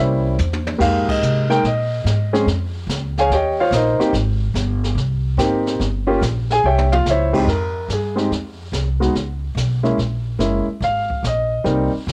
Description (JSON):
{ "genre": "jazz piano trio", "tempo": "144 BPM", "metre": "4/4", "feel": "swing 67% on 8ths", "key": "F minor", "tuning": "A4 = 441 Hz", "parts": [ { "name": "warm upright piano", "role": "melody", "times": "0.0-11.9 s", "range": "F2 to Ab5", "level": "-21 LUFS", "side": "equal", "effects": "cassette tape" }, { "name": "upright bass", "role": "bass", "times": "0.0-12.1 s", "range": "Gb1 to C3", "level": "-23 LUFS", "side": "equal", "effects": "none" }, { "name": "jazz brush drum kit", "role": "drums", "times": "0.4-12.1 s", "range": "brushed snare drum, crash cymbal, hi-hat, kick drum, ride cymbal, snare drum, toms", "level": "-31 LUFS", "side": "equal", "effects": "cassette tape" } ], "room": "light reverb", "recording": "home recording on cassette", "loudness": "-19 LUFS", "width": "mono", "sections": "0.0-7.5 A section; 7.5-12.1 B section", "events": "drum fill 0.4-0.8, 6.6-7.1; band accent 1.0", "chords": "0.0 C7b9; 0.8 Fm11; 2.5 Db; 3.3 Eb13; 4.1 Abmaj7; 5.8 Gm; 6.6 C; 7.5 Fm; 9.1 Db7(no3); 10.0 Gb9; 10.8 Ab" }